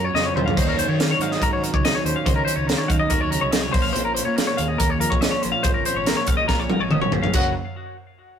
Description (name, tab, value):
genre	math rock and midwest emo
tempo	142 BPM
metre	4/4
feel	straight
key	unclear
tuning	A4 = 440 Hz
part	twelve-string electric guitar	accompaniment	0.0-7.5 s	Gb2 to Db5	-27 LUFS	right 3 dB	spring reverb
part	twelve-string electric guitar	arpeggios	0.0-7.5 s	Gb4 to F5	-24 LUFS	left 3 dB	analog delay
part	fuzz fingered electric bass	bass	0.0-7.5 s	Gb1 to Eb3	-28 LUFS	equal	overdrive
part	crisp fusion drum kit	drums	0.2-7.4 s	crash cymbal, hi-hat, kick drum, snare drum, toms	-22 LUFS	equal	none
room	moderate stone room reverb, RT60 1.0 s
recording	rough rehearsal-room recording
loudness	-18 LUFS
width	side -8 dB against mid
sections	0.0-7.3 A section; 7.3-8.4 B section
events	drum fill 0.1-0.6, 6.5-7.3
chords	0.0 Gbmaj7(no3); 0.6 Ebm7; 3.7 Bbm7; 7.3 Gbmaj7